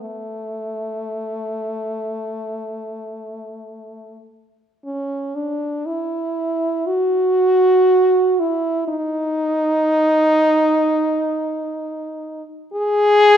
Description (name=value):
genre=classical, free, expressive piece for unaccompanied French horn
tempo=free time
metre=none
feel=none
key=unclear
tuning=A4 = 440 Hz
part: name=warm French horn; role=solo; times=0.0-13.4 s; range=A3 to G#4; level=-17 LUFS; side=equal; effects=none
room=moderate recital hall reverb, RT60 1.4 s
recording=recorded in a church or concert hall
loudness=-17 LUFS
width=side -9 dB against mid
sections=0.0-4.8 A section; 4.8-13.4 B section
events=none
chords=none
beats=free time